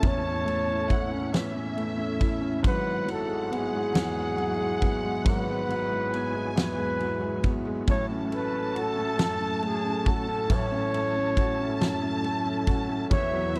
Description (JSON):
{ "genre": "six-eight pop ballad", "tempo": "46 BPM (dotted quarters)", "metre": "6/8", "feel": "straight", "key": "unclear", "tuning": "A4 = 440 Hz", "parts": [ { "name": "breathy flugelhorn", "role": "melody", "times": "0.0-13.6 s", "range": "G#4 to C#5", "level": "-32 LUFS", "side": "equal", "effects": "none" }, { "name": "warm studio violin section", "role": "second line", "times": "0.0-13.6 s", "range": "E5 to A5", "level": "-38 LUFS", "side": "equal", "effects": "none" }, { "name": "clear baby grand piano", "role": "accompaniment", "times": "0.0-13.6 s", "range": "E1 to F#4", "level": "-34 LUFS", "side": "equal", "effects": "none" }, { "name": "bright tonewheel organ", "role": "sustained chords", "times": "0.0-13.6 s", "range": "E2 to F#4", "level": "-37 LUFS", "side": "equal", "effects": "chorus vibrato, fast rotary speaker" }, { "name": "fingerpicked steel-string acoustic guitar", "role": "arpeggios", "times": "0.0-13.6 s", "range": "E3 to A4", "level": "-40 LUFS", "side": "equal", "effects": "none" }, { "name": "huge arena drum kit", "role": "drums", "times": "0.0-13.6 s", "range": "kick drum, ride cymbal, snare drum", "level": "-29 LUFS", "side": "equal", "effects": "none" } ], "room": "small room reverb", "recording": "dry, close 1970s-style studio recording", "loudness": "-27 LUFS", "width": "mono", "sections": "0.0-13.6 A section", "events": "none", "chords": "0.0 A; 2.6 Eadd9/G#; 7.9 F#m/A" }